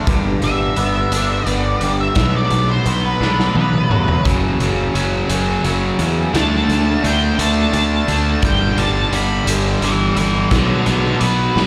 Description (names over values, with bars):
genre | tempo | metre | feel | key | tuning
quiet-loud alternative rock | 57 BPM (dotted quarters) | 6/8 | straight | unclear | A4 = 440 Hz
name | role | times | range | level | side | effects
twangy electric guitar | arpeggios | 0.0-4.3 s | G2 to D4 | -27 LUFS | equal | ensemble chorus, slapback echo
overdriven electric guitar | riff | 0.0-11.7 s | F#2 to D4 | -25 LUFS | equal | slapback echo
fuzz fingered electric bass | bass | 0.1-11.7 s | E1 to E2 | -21 LUFS | equal | overdrive
raw garage drum kit | drums | 0.1-11.7 s | hi-hat, kick drum, snare drum, toms | -24 LUFS | equal | none
octave-fuzz lead guitar | melody | 0.4-11.7 s | A4 to B5 | -23 LUFS | equal | distortion, slapback echo
crunchy overdriven guitar | riff | 4.2-11.7 s | F#2 to D4 | -24 LUFS | equal | slapback echo
room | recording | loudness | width
little or no reverb | live gig heard through the venue's PA, club reverb | -17 LUFS | mono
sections
0.0-11.7 A section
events
half time 0.0-11.7; lead electric guitar solo 0.0-11.7; drum fill 3.2-4.3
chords
0.1 G; 2.2 Bm; 4.3 F#5; 6.3 D5; 8.4 G; 10.5 B5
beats
| 0.07 1.12 | 2.16 3.21 | 4.25 5.30 | 6.34 7.39 | 8.43 9.47 | 10.52 11.56